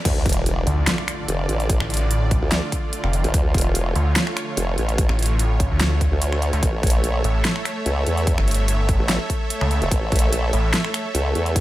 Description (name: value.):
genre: heavy wobble dubstep.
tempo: 146 BPM.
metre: 4/4.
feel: swing 53% on 16ths, half-time.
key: D harmonic minor.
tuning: A4 = 440 Hz.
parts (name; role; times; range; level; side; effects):
supersaw pad; sustained chords; 0.3-11.6 s; D3 to E5; -27 LUFS; right 1 dB; sidechain pumping.
formant-sweep wobble bass; bass; 0.1-11.6 s; E1 to E2; -22 LUFS; equal; chorus, overdrive.
big-room dance drum kit; drums; 0.1-11.6 s; crash cymbal, finger snaps, hi-hat, snare drum; -25 LUFS; equal; overdrive.
electronic kick drum; drums; 0.1-11.6 s; none; -21 LUFS; equal; overdrive.
impact; sound effects; 0.1-1.7 s; none; -30 LUFS; equal; none.
snarling distorted saw bass; bass; 0.7-10.7 s; F1 to D2; -20 LUFS; equal; distortion, overdrive.
room: little or no reverb.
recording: none.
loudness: -18 LUFS.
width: side -16 dB against mid.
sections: 0.1-11.6 A section.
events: drop 0.1-11.6; impact 0.1-1.7.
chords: 0.1 Dm; 6.6 A.